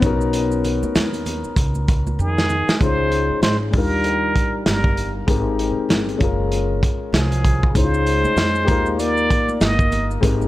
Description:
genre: hip hop, jazz-hop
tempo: 97 BPM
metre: 4/4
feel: swing 59% on 16ths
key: unclear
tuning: A4 = 443 Hz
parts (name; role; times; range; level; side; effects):
- dark grand piano; accompaniment; 0.0-10.5 s; G3 to C5; -23 LUFS; left 4 dB; none
- upright bass; bass; 0.0-10.5 s; Gb1 to F2; -23 LUFS; equal; none
- crunchy breakbeat drum kit; drums; 0.0-10.4 s; hi-hat, kick drum, snare drum; -20 LUFS; equal; none
- congas and maracas; percussion; 0.0-2.8, 7.8-10.5 s; none; -35 LUFS; right 5 dB; none
- trumpet with plunger mute; melody; 2.2-10.1 s; Ab4 to Eb5; -22 LUFS; equal; none
- breathy trombone; second line; 2.2-10.1 s; Eb3 to Bb3; -27 LUFS; right 3 dB; tape echo
room: light reverb, small room ambience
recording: none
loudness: -16 LUFS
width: side -16 dB against mid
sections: 0.0-2.8 A section; 2.8-10.5 B section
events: drum fill 2.2-2.8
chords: 0.0 Cbmaj9; 2.8 Dbmaj9; 3.7 Ebmaj9; 5.3 Abmaj9; 6.2 Gbmaj9; 7.8 Dbmaj9; 8.7 Ebmaj9

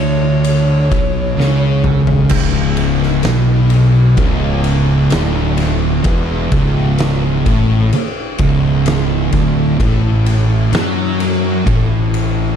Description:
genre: stoner and doom metal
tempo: 64 BPM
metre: 4/4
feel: straight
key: C# minor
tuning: A4 = 440 Hz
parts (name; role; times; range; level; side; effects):
- fuzz lead guitar; melody; 0.0-1.8 s; C#5; -22 LUFS; left 2 dB; distortion, analog delay
- thick fuzz guitar; riff; 0.0-12.6 s; C#2 to F#3; -18 LUFS; left 7 dB; distortion
- thick fuzz guitar; riff; 0.0-12.6 s; C#2 to F#3; -17 LUFS; right 7 dB; distortion
- fuzz fingered electric bass; bass; 0.0-12.6 s; C#1 to F#2; -19 LUFS; equal; overdrive, tube saturation
- oversized low-tuned drum kit; drums; 0.4-12.3 s; crash cymbal, kick drum, ride cymbal, snare drum, toms; -19 LUFS; equal; none
- thick fuzz guitar; riff; 2.3-12.6 s; C#2 to F#3; -20 LUFS; left 1 dB; distortion
room: light reverb, small room ambience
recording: dark, warm production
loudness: -12 LUFS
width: side -8 dB against mid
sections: 0.0-2.3 A section; 2.3-12.6 B section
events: drum fill 1.4-2.3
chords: 0.0 N.C.; 2.3 C#m; 9.8 A5

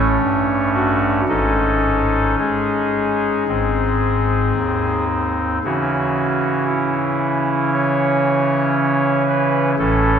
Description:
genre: classical, chorale-style piece for pipe organ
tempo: 54-60 BPM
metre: 4/4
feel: rubato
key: C# minor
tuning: A4 = 440 Hz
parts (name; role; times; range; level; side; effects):
- pipe organ, soft reed; solo; 0.0-10.2 s; G#1 to C#5; -16 LUFS; equal; none
room: wet cathedral reverb, RT60 4.5 s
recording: none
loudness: -16 LUFS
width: side -8 dB against mid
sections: 0.0-5.6 A section; 5.6-10.2 B section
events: none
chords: 0.0 A7; 1.3 G#sus4; 3.5 G#; 5.6 C#m

